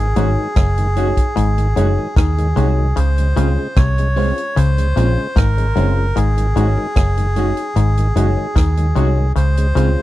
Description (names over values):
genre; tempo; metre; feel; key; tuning
roots reggae; 75 BPM; 4/4; straight; Db major; A4 = 440 Hz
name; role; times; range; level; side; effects
melodica; melody; 0.0-10.0 s; Ab4 to Db5; -23 LUFS; equal; tape echo
tonewheel organ; accompaniment; 0.0-10.0 s; Ab2 to Gb4; -29 LUFS; equal; overdrive, slow rotary speaker
vintage muted fingered electric bass; bass; 0.0-9.9 s; Gb1 to Eb2; -15 LUFS; equal; none
electric guitar at the edge of break-up; accompaniment; 0.2-9.9 s; Ab3 to Gb4; -27 LUFS; right 8 dB; spring reverb, tape echo
muted clav; riff; 0.2-9.9 s; Gb2 to Eb3; -23 LUFS; left 6 dB; overdrive
dark upright piano; stabs; 0.2-10.0 s; Db4 to Db5; -25 LUFS; left 5 dB; none
vintage drum kit; drums; 0.2-10.0 s; hi-hat, kick drum, rim click; -17 LUFS; equal; none
room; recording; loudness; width
studio reverb; dry, close 1970s-style studio recording; -14 LUFS; side -15 dB against mid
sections
0.0-10.0 A section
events
none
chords
0.0 Ab7sus4; 3.0 Dbmaj7; 6.2 Ab7sus4; 9.4 Dbmaj7